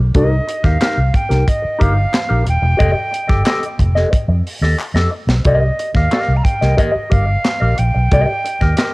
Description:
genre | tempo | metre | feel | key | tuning
funk | 90 BPM | 4/4 | straight | C dorian | A4 = 440 Hz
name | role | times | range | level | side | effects
mellow electric guitar | accompaniment | 0.0-8.9 s | Eb4 to Eb5 | -20 LUFS | left 1 dB | wah, cassette tape
vintage muted fingered electric bass | bass | 0.0-8.7 s | Eb1 to F2 | -15 LUFS | equal | none
breathy silver concert flute | melody | 0.1-8.9 s | Eb5 to Bb5 | -21 LUFS | right 1 dB | cassette tape
tight funk drum kit | drums | 0.1-8.9 s | hi-hat, kick drum, snare drum | -18 LUFS | equal | cassette tape
group handclap | percussion | 0.8-8.9 s | none | -29 LUFS | left 2 dB | none
room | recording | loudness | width
studio reverb | home recording on cassette | -13 LUFS | side -23 dB against mid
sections
0.0-8.9 A section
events
drum fill 4.8-5.5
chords
0.0 Cm7; 2.8 F9; 5.5 Cm7

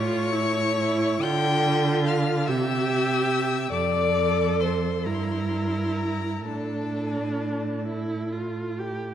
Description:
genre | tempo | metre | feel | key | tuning
classical, slow romantic movement for string quartet | 42-49 BPM (dotted quarters) | 6/8 | rubato | D minor | A4 = 440 Hz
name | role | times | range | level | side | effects
warm violin | melody | 0.0-7.8 s | A5 to G6 | -31 LUFS | left 8 dB | none
rich violin | second line | 0.0-7.9 s | A4 to G5 | -29 LUFS | left 5 dB | none
warm viola | accompaniment | 0.0-9.1 s | D4 to A4 | -28 LUFS | right 1 dB | none
rich cello | bass | 0.0-9.0 s | F2 to D3 | -27 LUFS | right 3 dB | none
room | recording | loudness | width
moderate concert hall reverb, RT60 1.9 s | dark, warm production | -22 LUFS | side -10 dB against mid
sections
0.0-9.1 A section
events
none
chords
0.0 A; 1.2 Dm; 2.5 C; 3.7 F; 5.1 Edim/G; 6.4 D5/A; 7.9 A5

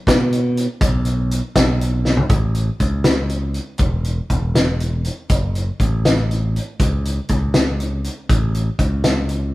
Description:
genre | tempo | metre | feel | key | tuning
math rock and midwest emo | 80 BPM (dotted quarters) | 6/8 | straight | unclear | A4 = 438 Hz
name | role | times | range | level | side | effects
modern bright picked electric bass | bass | 0.1-9.5 s | E1 to B2 | -20 LUFS | equal | none
loose indie drum kit | drums | 0.1-9.4 s | hi-hat, kick drum, snare drum, toms | -18 LUFS | equal | none
room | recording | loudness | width
little or no reverb | band playing live in one room | -16 LUFS | side -18 dB against mid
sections
0.0-2.3 A section; 2.3-9.5 B section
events
drum fill 2.1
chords
none

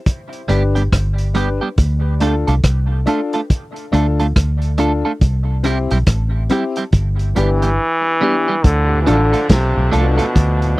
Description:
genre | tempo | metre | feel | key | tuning
dub reggae | 70 BPM | 4/4 | swing 62% on 16ths | D dorian | A4 = 440 Hz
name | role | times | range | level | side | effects
vintage drum kit | drums | 0.1-10.8 s | hi-hat, kick drum, rim click, snare drum | -14 LUFS | equal | none
clean electric guitar | accompaniment | 0.5-10.3 s | G3 to A4 | -22 LUFS | right 3 dB | dub echo
warm concert grand piano | stabs | 0.5-10.2 s | B3 to B4 | -23 LUFS | left 4 dB | dub echo
vintage muted fingered electric bass | bass | 0.5-10.8 s | G1 to D2 | -16 LUFS | equal | none
brilliant trombone | melody | 7.4-10.8 s | B2 to E3 | -18 LUFS | equal | dub echo
clear horn section | second line | 8.6-10.8 s | A2 to D4 | -26 LUFS | right 2 dB | dub echo
mellow tonewheel organ | accompaniment | 8.9-10.7 s | D2 to D4 | -24 LUFS | left 2 dB | none
room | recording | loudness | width
light reverb | dry, close 1970s-style studio recording | -14 LUFS | side -19 dB against mid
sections
0.0-8.6 A section; 8.6-10.8 B section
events
none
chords
0.1 G; 1.8 Dm; 5.2 C; 6.9 G; 8.6 Dm

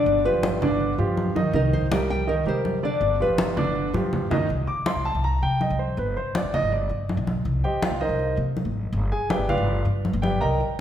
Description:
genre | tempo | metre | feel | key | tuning
latin, Cuban son and guajira | 162 BPM | 4/4 | straight | C minor | A4 = 441 Hz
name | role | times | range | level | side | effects
nylon-string guitar | melody | 0.0-4.3 s | Bb4 to G5 | -26 LUFS | left 3 dB | none
dark baby grand piano | arpeggios | 0.0-10.6 s | D3 to D6 | -25 LUFS | right 2 dB | none
upright bass | bass | 0.0-10.6 s | G1 to C3 | -26 LUFS | equal | none
congas | percussion | 0.1-10.8 s | none | -28 LUFS | left 1 dB | none
room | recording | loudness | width
wet recital hall reverb, RT60 1.6 s | recorded in a church or concert hall | -21 LUFS | side -10 dB against mid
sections
0.0-4.5 A section; 4.5-10.8 B section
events
drum fill 3.9-4.5; grand piano solo 4.5-10.8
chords
0.1 G7; 1.5 Cm7; 3.0 G7; 4.5 Csus2; 6.0 G; 7.5 Cm7; 8.9 G7

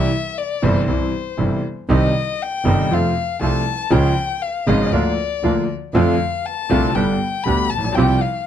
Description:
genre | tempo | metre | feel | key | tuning
tango | 119 BPM | 4/4 | rubato | unclear | A4 = 437 Hz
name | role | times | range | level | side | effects
warm violin | second line | 0.0-8.5 s | C5 to B5 | -23 LUFS | left 8 dB | none
bright concert grand piano | accompaniment | 0.0-8.2 s | G1 to G4 | -19 LUFS | right 1 dB | none
clear double bass | bass | 0.0-8.2 s | G1 to F2 | -21 LUFS | right 1 dB | none
bandoneon | stabs | 1.9-8.2 s | G3 to G4 | -26 LUFS | right 5 dB | none
room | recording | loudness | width
light reverb | dark, warm production | -16 LUFS | side -10 dB against mid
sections
0.0-8.5 A section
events
violin solo 0.0-8.5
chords
0.0 C; 1.9 Cm; 2.9 F; 3.9 Db; 4.9 Bb/D; 5.9 F6; 6.9 G; 8.0 Csus4

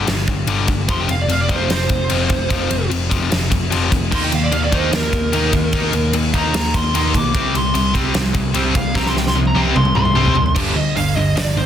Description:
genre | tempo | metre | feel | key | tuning
hard rock | 149 BPM | 4/4 | straight | G minor | A4 = 440 Hz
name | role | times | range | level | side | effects
distorted electric guitar | riff | 0.0-11.7 s | F2 to Eb4 | -21 LUFS | left 6 dB | overdrive
hollow-body short-scale picked electric bass | bass | 0.0-11.7 s | F1 to Eb2 | -22 LUFS | right 1 dB | none
big rock drum kit | drums | 0.1-11.5 s | crash cymbal, hi-hat, kick drum, ride cymbal, snare drum, toms | -20 LUFS | equal | none
smooth overdriven lead guitar | melody | 0.9-11.7 s | Bb4 to D6 | -22 LUFS | right 1 dB | none
crunchy overdriven guitar | riff | 4.1-11.7 s | G2 to Eb4 | -23 LUFS | right 11 dB | none
room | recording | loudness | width
small room ambience | dense, heavily limited modern master | -15 LUFS | side -9 dB against mid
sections
0.0-10.6 A section; 10.6-11.7 B section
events
lead electric guitar solo 0.0-10.6; drum fill 8.9-10.6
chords
0.0 G5; 0.9 F5; 4.1 Eb5; 7.3 C5; 10.6 G5

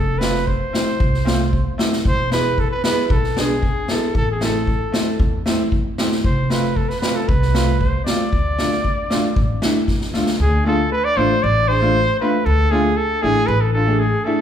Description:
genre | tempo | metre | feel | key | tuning
klezmer | 115 BPM | 4/4 | straight | D dorian sharp4 | A4 = 440 Hz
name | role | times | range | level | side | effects
warm cornet | melody | 0.0-14.4 s | G#4 to D5 | -21 LUFS | equal | none
upright bass | bass | 0.0-14.1 s | E1 to F2 | -21 LUFS | equal | none
bright upright piano | accompaniment | 0.2-14.4 s | G#3 to G#4 | -22 LUFS | equal | none
street-band drum kit | drums | 0.2-10.4 s | kick drum, snare drum | -21 LUFS | left 1 dB | none
room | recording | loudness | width
wet large studio reverb, RT60 1.3 s | band playing live in one room | -16 LUFS | side -9 dB against mid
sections
0.0-10.4 A section; 10.4-14.4 B section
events
drum fill 9.9-10.4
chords
0.0 F; 2.1 E; 4.2 Am; 6.2 F; 8.3 Dm

